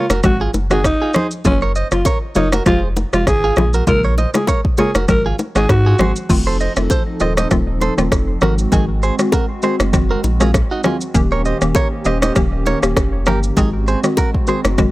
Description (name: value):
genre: afrobeats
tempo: 99 BPM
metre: 4/4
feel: swing 55% on 16ths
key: unclear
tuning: A4 = 439 Hz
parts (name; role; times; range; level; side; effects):
- breathy alto saxophone; melody; 0.0-6.1 s; Db4 to Bb4; -20 LUFS; equal; none
- hollow square pluck; accompaniment; 0.0-14.9 s; C3 to G4; -21 LUFS; left 2 dB; chorus
- direct-recorded clean electric guitar; riff; 0.0-14.6 s; Eb4 to Eb5; -22 LUFS; right 4 dB; analog delay
- warm sub bass; bass; 0.1-14.9 s; Eb1 to Ab2; -18 LUFS; equal; none
- afro-pop drum kit; drums; 0.1-14.9 s; crash cymbal, kick drum, rim click, shaker; -19 LUFS; equal; none
- bongos and congas; percussion; 0.1-14.9 s; none; -22 LUFS; left 2 dB; none
- hollow soft pad; sustained chords; 6.3-14.9 s; Eb3 to A4; -24 LUFS; right 1 dB; chorus, sidechain pumping
room: little or no reverb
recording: dry, gritty hardware recording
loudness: -13 LUFS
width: side -18 dB against mid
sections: 0.0-6.3 A section; 6.3-14.9 B section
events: none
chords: 0.2 Ab7; 1.4 Gbmaj7; 2.7 Fm; 3.6 Bbm7; 5.1 Ab7; 6.3 F7; 8.4 Ab7; 11.1 Eb7; 13.6 Ab7